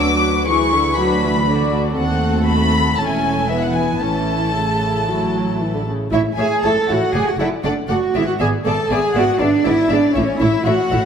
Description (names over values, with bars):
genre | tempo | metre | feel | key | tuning
quick classical-period movement for string orchestra | 119 BPM | 4/4 | straight | A major | A4 = 440 Hz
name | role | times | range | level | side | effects
warm chamber violin section | melody | 0.0-11.1 s | C#5 to D6 | -22 LUFS | left 4 dB | none
warm chamber violin section | second line | 0.0-11.0 s | E4 to F#5 | -25 LUFS | left 2 dB | none
dark chamber viola section | accompaniment | 0.0-11.0 s | C#3 to A4 | -21 LUFS | equal | none
dark chamber cello section | bass | 0.0-11.1 s | D2 to A4 | -20 LUFS | right 2 dB | none
dark chamber double bass section | bass | 0.0-11.0 s | E1 to D#2 | -23 LUFS | right 2 dB | none
room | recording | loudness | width
wet scoring stage reverb, RT60 1.7 s | none | -15 LUFS | side -7 dB against mid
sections
0.0-6.1 A section; 6.1-11.1 B section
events
none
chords
0.0 Bm/D; 2.0 D#dim7; 3.0 A/E; 3.5 E; 4.0 A; 7.1 D/F#; 8.2 E7/G#; 10.2 A